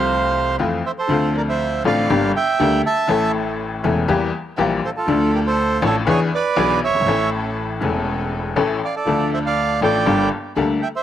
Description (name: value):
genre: tango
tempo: 120 BPM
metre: 4/4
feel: rubato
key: D minor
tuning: A4 = 440 Hz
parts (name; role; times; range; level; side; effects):
- bandoneon; melody; 0.0-11.0 s; F4 to A5; -20 LUFS; right 4 dB; slapback echo
- clear upright piano; accompaniment; 0.0-10.8 s; E1 to F5; -20 LUFS; left 5 dB; slapback echo
- dark studio string section; stabs; 0.0-10.8 s; E3 to A4; -31 LUFS; right 3 dB; slapback echo
- upright bass; bass; 0.0-10.8 s; E1 to F2; -25 LUFS; right 2 dB; none
room: little or no reverb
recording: recorded outdoors, with no room sound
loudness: -17 LUFS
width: side -11 dB against mid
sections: 0.0-1.1 A section; 1.1-11.0 B section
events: none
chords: 0.0 Fmaj7; 1.1 Dm7; 2.1 Gm; 3.1 A; 4.1 Edim; 5.1 Dm; 6.1 E7; 7.1 A; 9.1 Dm; 10.1 Gmadd9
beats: 0.09 0.59 | 1.09 1.59 2.09 2.59 | 3.09 3.59 4.08 4.58 | 5.08 5.57 6.07 6.57 | 7.07 7.57 8.06 8.56 | 9.07 9.57 10.07 10.57